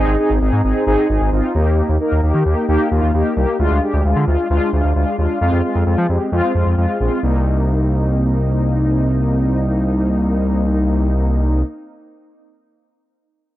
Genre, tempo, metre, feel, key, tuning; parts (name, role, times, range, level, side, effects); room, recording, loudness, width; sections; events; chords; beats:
synth-pop; 132 BPM; 4/4; straight; C minor; A4 = 438 Hz
mellow synth brass; accompaniment; 0.0-11.6 s; Ab3 to Bb4; -18 LUFS; left 1 dB; chorus
smooth synth bass; bass; 0.0-11.6 s; Ab1 to F3; -16 LUFS; equal; transformer saturation
digital ambience; dry, gritty hardware recording; -14 LUFS; side -14 dB against mid
0.0-7.2 A section; 7.2-10.9 B section
0.0 Ab; 1.5 Eb; 3.6 Ddim; 5.4 Fm; 7.2 Cm7
0.41 0.87 1.32 | 1.77 2.23 2.68 3.14 | 3.59 4.05 4.50 4.96 | 5.41 5.87 6.32 6.78 | 7.23 7.68 8.14 8.59 | 9.05 9.50 9.96 10.41